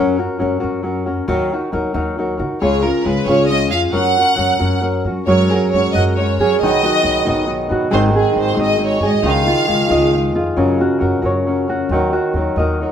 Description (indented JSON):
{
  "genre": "mexican folk, mariachi",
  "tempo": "91 BPM (dotted quarters)",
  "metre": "6/8",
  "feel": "straight",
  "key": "F# major",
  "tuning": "A4 = 440 Hz",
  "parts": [
    { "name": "flamenco guitar", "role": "accompaniment", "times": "0.0-12.9 s", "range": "G#2 to B4", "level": "-18 LUFS", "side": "left 2 dB", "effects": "none" },
    { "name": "upright bass", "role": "bass", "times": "0.0-12.8 s", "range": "G#1 to F#3", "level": "-22 LUFS", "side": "right 1 dB", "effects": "none" },
    { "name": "clear studio violin section", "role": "melody", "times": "2.6-10.1 s", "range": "G#4 to F#5", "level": "-18 LUFS", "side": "right 1 dB", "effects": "none" },
    { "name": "Celtic harp", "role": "arpeggios", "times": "5.3-12.9 s", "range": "C#3 to F#5", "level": "-17 LUFS", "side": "right 2 dB", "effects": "none" }
  ],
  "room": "wet stone room reverb, RT60 1.1 s",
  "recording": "band playing live in one room",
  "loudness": "-14 LUFS",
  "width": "side -8 dB against mid",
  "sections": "0.0-5.3 A section; 5.3-12.9 A section",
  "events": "none",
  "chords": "0.0 F#; 1.3 D#m; 2.6 C#; 3.9 F#; 5.3 F#add9; 6.6 B; 7.9 G#; 9.2 C#add9; 10.6 F#; 11.9 D#m"
}